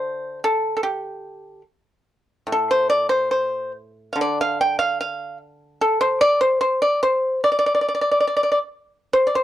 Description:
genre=chinese traditional, Chinese solo plucked strings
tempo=72 BPM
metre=2/4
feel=uneven beats, rubato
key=D yu mode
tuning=A4 = 440 Hz
part: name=pipa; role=solo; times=0.0-9.4 s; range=A2 to G5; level=-18 LUFS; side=equal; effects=none
room=little or no reverb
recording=dry, close 1970s-style studio recording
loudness=-18 LUFS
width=side -12 dB against mid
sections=0.0-9.1 A section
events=none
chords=none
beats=0.02 | 0.82 1.65 | 2.49 3.34 | 4.17 4.99 | 5.79 6.59 | 7.41 8.27 | 9.13

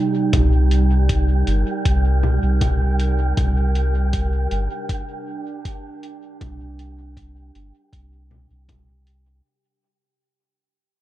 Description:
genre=ambient dub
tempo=79 BPM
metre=4/4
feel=straight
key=C minor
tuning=A4 = 440 Hz
part: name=warbly tape-like pad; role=sustained chords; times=0.0-9.4 s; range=C3 to Bb4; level=-26 LUFS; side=right 3 dB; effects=chorus, built-in reverb, vintage 12-bit sampler grit
part: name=wind-like tuned noise texture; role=texture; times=0.0-9.5 s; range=G4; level=-30 LUFS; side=right 3 dB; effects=built-in reverb
part: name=soft dub sub bass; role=bass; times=0.3-9.4 s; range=G1 to C2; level=-18 LUFS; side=equal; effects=none
part: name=electronic hi-hat and congas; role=drums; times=0.3-9.2 s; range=none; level=-28 LUFS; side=left 2 dB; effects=none
part: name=electronic kick drum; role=drums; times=0.3-8.8 s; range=none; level=-23 LUFS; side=equal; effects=none
room=little or no reverb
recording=dark, warm production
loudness=-17 LUFS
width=side -14 dB against mid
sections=0.0-9.4 A section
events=fade-out 0.0-9.4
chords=0.0 Cm7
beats=| 0.33 1.09 1.85 2.61 | 3.37 4.13 4.89 5.65 | 6.41 7.17 7.93 8.69

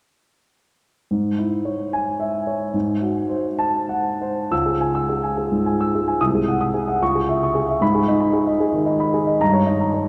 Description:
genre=classical, romantic character piece for solo piano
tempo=62-76 BPM (dotted quarters)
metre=6/8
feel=rubato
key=C# minor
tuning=A4 = 440 Hz
part: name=warm grand piano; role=solo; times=1.1-10.1 s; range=B#1 to E6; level=-20 LUFS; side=equal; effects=none
room=wet cathedral reverb, RT60 6.0 s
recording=recorded in a church or concert hall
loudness=-21 LUFS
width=mono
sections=1.1-4.5 A section; 4.5-10.1 B section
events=none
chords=1.1 C#m/G#; 2.7 G#7b9; 4.5 C#m; 6.2 G#7/B#; 7.0 C#m; 7.8 G#m; 9.4 D#7/G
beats=| 1.11 1.93 | 2.74 3.59 | 4.51 5.36 | 6.19 7.01 | 7.81 8.61 | 9.40

